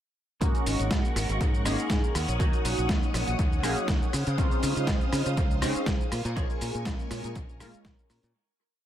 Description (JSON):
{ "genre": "filtered disco house", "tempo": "121 BPM", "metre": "4/4", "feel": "swing 54% on 16ths", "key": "unclear", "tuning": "A4 = 440 Hz", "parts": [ { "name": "funky polysynth comp", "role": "accompaniment", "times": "0.4-8.3 s", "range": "Gb3 to Bb4", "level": "-32 LUFS", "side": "equal", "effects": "chorus, phaser, sidechain pumping" }, { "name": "phased string machine", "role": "sustained chords", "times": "0.4-8.3 s", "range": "Bb4 to Eb6", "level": "-35 LUFS", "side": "equal", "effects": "ensemble chorus, phaser, sidechain pumping" }, { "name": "modern bright fingered electric bass", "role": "bass", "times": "0.4-8.3 s", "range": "Ab1 to Db3", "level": "-31 LUFS", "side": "equal", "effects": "sidechain pumping" }, { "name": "dusty soul sampler-style drum kit", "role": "drums", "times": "0.4-8.3 s", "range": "hi-hat, rim click, shaker, snare drum", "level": "-33 LUFS", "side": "right 1 dB", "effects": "overdrive, studio reverb, dub echo" }, { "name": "electronic kick drum", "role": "drums", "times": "0.4-8.0 s", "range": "none", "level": "-28 LUFS", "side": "equal", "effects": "studio reverb" } ], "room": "light reverb", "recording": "echo-heavy mix", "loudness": "-25 LUFS", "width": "side -11 dB against mid", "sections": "0.4-8.3 drop", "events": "drop 0.4-8.3; fade-out 5.7-8.3", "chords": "0.4 Ab9sus4; 2.1 Ebm7; 4.1 Dbmaj9; 6.1 Bbm7" }